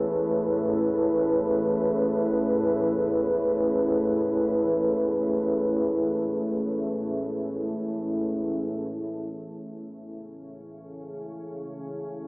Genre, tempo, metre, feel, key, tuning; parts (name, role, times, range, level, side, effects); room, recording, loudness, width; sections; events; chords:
dark ambient drone; free time; A major; A4 = 440 Hz
dark analog pad; sustained chords; 0.0-12.3 s; A3 to C#5; -25 LUFS; equal; chorus
organ-like drone; drone; 0.0-12.3 s; A1 to C#3; -32 LUFS; equal; ensemble chorus, built-in reverb
wet cathedral reverb, RT60 7.1 s; in a vast, echoing space, AM radio sound; -23 LUFS; side -26 dB against mid
0.0-9.3 A section; 9.3-12.3 B section
0.0 E/A; 9.3 A